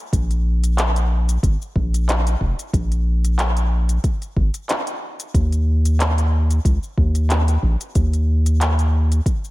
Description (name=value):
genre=organic downtempo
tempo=92 BPM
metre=4/4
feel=swing 54% on 16ths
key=unclear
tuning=A4 = 441 Hz
part: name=round analog bass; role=bass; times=0.1-9.2 s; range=F1 to Eb2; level=-17 LUFS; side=equal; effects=tube saturation, sidechain pumping
part: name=electronic kick drum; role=drums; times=0.1-9.4 s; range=none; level=-20 LUFS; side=equal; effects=overdrive
part: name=organic electronic drum kit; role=drums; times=0.1-9.5 s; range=handclaps, hi-hat, shaker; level=-25 LUFS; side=equal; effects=overdrive
room=little or no reverb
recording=none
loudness=-17 LUFS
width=side -19 dB against mid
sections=0.0-9.5 A section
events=none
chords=none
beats=| 0.13 0.78 1.43 2.08 | 2.73 3.39 4.04 4.69 | 5.34 6.00 6.65 7.30 | 7.95 8.61 9.26